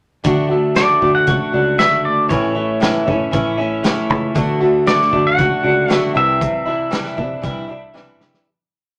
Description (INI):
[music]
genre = folk rock and heartland rock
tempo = 117 BPM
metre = 4/4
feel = straight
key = D major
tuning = A4 = 442 Hz
[part]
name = picked acoustic archtop guitar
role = accompaniment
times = 0.2-8.5 s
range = A2 to F#4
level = -21 LUFS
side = equal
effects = none
[part]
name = twelve-string electric guitar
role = riff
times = 0.2-8.5 s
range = A2 to F#4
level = -26 LUFS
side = equal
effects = none
[part]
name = fingered electric bass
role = bass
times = 0.2-8.4 s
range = A1 to C3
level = -26 LUFS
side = equal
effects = none
[part]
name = vintage drum kit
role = drums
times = 0.2-8.5 s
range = hi-hat, kick drum, snare drum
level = -24 LUFS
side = equal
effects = none
[part]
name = pedal steel guitar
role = melody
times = 0.8-7.9 s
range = C#5 to F#5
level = -20 LUFS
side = equal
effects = none
[sound]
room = moderate studio reverb, RT60 0.5 s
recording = none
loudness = -16 LUFS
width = mono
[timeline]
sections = 0.2-8.5 verse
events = fade-out 6.4-8.5; drum fill 8.0-8.5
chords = 0.2 D; 2.3 A; 4.4 D; 6.2 Cadd9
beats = | 0.25 0.76 1.28 1.79 | 2.31 2.82 3.34 3.85 | 4.36 4.87 5.39 5.90 | 6.41 6.92 7.44 7.95